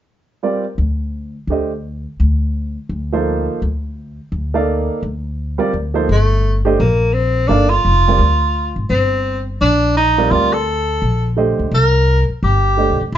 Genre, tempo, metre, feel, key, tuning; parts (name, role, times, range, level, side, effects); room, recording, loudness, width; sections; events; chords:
jazz; 170 BPM; 4/4; swing 62% on 8ths; G minor; A4 = 440 Hz
warm grand piano; accompaniment; 0.4-13.0 s; D3 to F5; -18 LUFS; right 3 dB
upright bass; bass; 0.8-13.2 s; F1 to D2; -17 LUFS; left 1 dB
warm tenor saxophone; melody; 6.1-13.2 s; A3 to Bb4; -16 LUFS; equal; plate reverb
light reverb; nothing above 7.6 kHz; -14 LUFS; side -11 dB against mid
0.4-6.1 A section; 6.1-13.2 B section
0.4 Gm9 (rootless); 6.1 Gm9; 11.7 Cm9